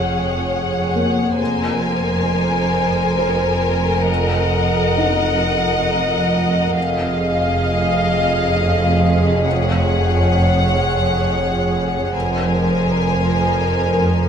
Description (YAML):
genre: cinematic, suspense film score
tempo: 67 BPM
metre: 3/4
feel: straight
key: unclear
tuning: A4 = 440 Hz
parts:
  - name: warm studio violin section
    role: melody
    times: 0.0-14.3 s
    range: F5 to Ab5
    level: -23 LUFS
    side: left 4 dB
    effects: none
  - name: rich studio violin section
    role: second line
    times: 0.0-14.3 s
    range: Ab4 to Eb5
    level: -23 LUFS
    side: left 3 dB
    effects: none
  - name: glass harmonica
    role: sustained chords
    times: 0.0-14.3 s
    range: Ab4 to Ab5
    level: -23 LUFS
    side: right 1 dB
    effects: none
  - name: clear studio cello section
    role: bass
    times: 0.0-14.3 s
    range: F2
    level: -23 LUFS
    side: right 2 dB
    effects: none
  - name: rich studio double bass section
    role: bass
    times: 0.0-14.3 s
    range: F1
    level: -22 LUFS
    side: right 2 dB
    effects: none
  - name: swarming drone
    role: drone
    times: 0.0-14.3 s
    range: F2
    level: -25 LUFS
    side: equal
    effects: built-in reverb
  - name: felt-muted upright piano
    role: texture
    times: 0.0-14.3 s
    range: Bb3 to Eb5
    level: -26 LUFS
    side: left 3 dB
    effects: none
room: wet recital hall reverb, RT60 1.8 s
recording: none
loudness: -15 LUFS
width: side -7 dB against mid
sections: 0.0-14.3 A section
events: none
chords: 0.0 Gbsus2/F; 1.4 Abadd9/F; 4.1 Ebmadd9/F; 6.8 Fm7; 9.5 Gbsus2/F; 12.1 Abadd9/F